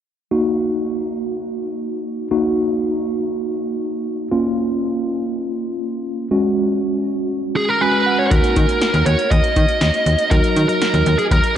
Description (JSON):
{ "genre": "synth-pop", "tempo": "120 BPM", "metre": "4/4", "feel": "straight", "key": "Eb minor", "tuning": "A4 = 439 Hz", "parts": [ { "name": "mellow tine electric piano", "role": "accompaniment", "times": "0.3-11.6 s", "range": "Gb3 to Ab5", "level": "-20 LUFS", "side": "equal", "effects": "medium stereo tremolo" }, { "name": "high-gain lead guitar", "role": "melody", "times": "7.6-11.6 s", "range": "Ab4 to Eb5", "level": "-17 LUFS", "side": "right 2 dB", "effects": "distortion, diffuse ambient delay" }, { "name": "slap-like FM bass", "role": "bass", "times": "8.3-11.4 s", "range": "Eb2 to Eb3", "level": "-17 LUFS", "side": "equal", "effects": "none" }, { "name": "electro analog drum machine", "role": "drums", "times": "8.3-11.6 s", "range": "hi-hat, kick drum, snare drum", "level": "-19 LUFS", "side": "equal", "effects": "none" } ], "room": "wet cathedral reverb, RT60 5.9 s", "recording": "dreamy mix soaked in reverb, nothing above 10.7 kHz", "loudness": "-16 LUFS", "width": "side -10 dB against mid", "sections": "0.3-8.3 A section; 8.3-11.6 B section", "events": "tine electric piano fill 7.6-8.3", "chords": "0.3 Ebm; 4.3 Bbm; 6.3 Dbsus4; 8.3 Ebm", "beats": "| 0.31 0.81 1.31 1.81 | 2.31 2.81 3.31 3.81 | 4.31 4.81 5.31 5.81 | 6.31 6.81 7.31 7.81 | 8.31 8.81 9.31 9.81 | 10.31 10.81 11.31" }